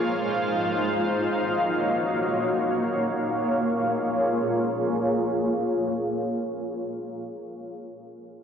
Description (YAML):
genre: hip hop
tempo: free time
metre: none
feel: none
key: Bb minor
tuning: A4 = 440 Hz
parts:
  - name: granular cloud pad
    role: solo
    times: 0.0-7.0 s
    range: Bb3 to F5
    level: -24 LUFS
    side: equal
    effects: built-in reverb, low-pass filter
room: moderate lush hall reverb, RT60 2.5 s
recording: dry, gritty hardware recording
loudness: -23 LUFS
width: side -7 dB against mid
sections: 0.0-2.8 A section; 2.8-6.2 B section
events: filter sweep on ambient pad 0.0-2.8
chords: 0.0 Fm7; 1.0 Ebm9; 2.8 Bbm7